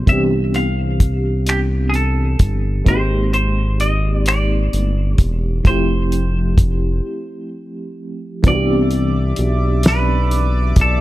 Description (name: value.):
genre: slow six-eight R&B.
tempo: 43 BPM (dotted quarters).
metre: 6/8.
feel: straight.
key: C major.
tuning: A4 = 441 Hz.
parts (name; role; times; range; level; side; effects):
semi-hollow electric guitar; melody; 0.0-11.0 s; G4 to F5; -23 LUFS; right 1 dB; digital delay.
FM electric piano with tremolo; accompaniment; 0.0-11.0 s; E3 to G4; -22 LUFS; right 1 dB; phaser.
smooth synth bass; bass; 0.0-11.0 s; E1 to C2; -18 LUFS; equal; none.
cloth-damped thuddy drum kit; drums; 0.1-11.0 s; finger snaps, hi-hat, kick drum, snare drum; -14 LUFS; equal; none.
chorused pulse-width pad; sustained chords; 8.5-11.0 s; D5 to D6; -27 LUFS; right 1 dB; none.
room: small room ambience.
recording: none.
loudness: -14 LUFS.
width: side -16 dB against mid.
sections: 0.0-8.4 A section; 8.4-11.0 B section.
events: break 7.0-8.4.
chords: 0.0 Cmaj9; 2.9 Abmaj9; 5.7 Fmaj9; 8.4 Cmaj9.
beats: | 0.07 1.47 | 2.86 4.26 | 5.65 7.05 | 8.44 9.84.